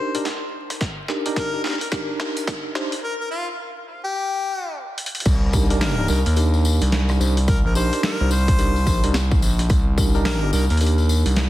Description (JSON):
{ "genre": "glitch hop", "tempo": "108 BPM", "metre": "4/4", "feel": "swing 62% on 16ths", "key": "C minor", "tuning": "A4 = 440 Hz", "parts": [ { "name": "clear harmonica", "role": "melody", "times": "0.0-10.8 s", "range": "F4 to C5", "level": "-28 LUFS", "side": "left 2 dB", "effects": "low-pass filter, dub echo" }, { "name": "tine electric piano", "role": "stabs", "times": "0.0-11.5 s", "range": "D4 to C5", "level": "-27 LUFS", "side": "right 1 dB", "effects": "fast stereo tremolo, vintage 12-bit sampler grit, sidechain pumping, dub echo" }, { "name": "boom bap sampler-style drum kit", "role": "drums", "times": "0.1-11.5 s", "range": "crash cymbal, hi-hat, rim click, snare drum", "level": "-27 LUFS", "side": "equal", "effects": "high-pass filter on hats, high-pass filter on snare, high-pass filter on cymbals" }, { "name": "electronic kick drum", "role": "drums", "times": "0.8-10.1 s", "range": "none", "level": "-20 LUFS", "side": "equal", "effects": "none" }, { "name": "gritty driven synth bass", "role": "bass", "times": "5.3-11.5 s", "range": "Bb1 to Eb2", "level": "-19 LUFS", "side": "equal", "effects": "overdrive" }, { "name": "tambourine", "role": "percussion", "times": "5.3-11.5 s", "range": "none", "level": "-32 LUFS", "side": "left 4 dB", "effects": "none" } ], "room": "light reverb", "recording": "dense, heavily limited modern master, vinyl crackle, high-pass filter", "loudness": "-18 LUFS", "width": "side -15 dB against mid", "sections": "0.0-5.3 A section; 5.3-11.5 B section", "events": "build-up 0.0-5.3; drum fill 0.0-3.0, 5.0; break 3.0-5.3; drop 5.3-11.5", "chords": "0.0 Cm7 (rootless); 5.3 Cm7" }